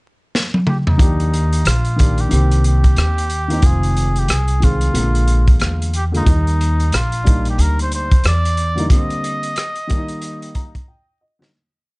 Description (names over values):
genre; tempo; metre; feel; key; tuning
hip hop, jazz-hop; 91 BPM; 4/4; swing 62% on 16ths; Eb major; A4 = 439 Hz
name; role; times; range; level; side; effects
crunchy breakbeat drum kit; drums; 0.3-11.5 s; hi-hat, kick drum, rim click, snare drum, toms; -16 LUFS; equal; none
trumpet with cup mute; melody; 0.7-10.9 s; Eb4 to Eb5; -24 LUFS; equal; tape echo
dark upright piano; accompaniment; 1.0-11.5 s; C3 to Bb5; -22 LUFS; left 1 dB; none
upright bass; bass; 1.0-8.9 s; F1 to Fb2; -16 LUFS; equal; none
room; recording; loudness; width
little or no reverb; vinyl crackle, nothing above 10.3 kHz; -14 LUFS; side -26 dB against mid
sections
0.0-1.0 pickup bar; 1.0-11.5 A section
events
drum fill 0.3-1.0, 10.9-11.5; break 8.9-11.5; fade-out 8.9-11.5; upright piano fill 10.2-11.5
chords
0.0 N.C.; 1.0 Ebmaj7; 2.3 Cm7; 3.6 Fm7; 4.9 Bb7; 6.3 Ebmaj7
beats
0.33 | 0.99 1.65 2.31 2.97 | 3.63 4.29 4.95 5.61 | 6.27 6.93 7.58 8.24 | 8.90 9.56 10.22 10.88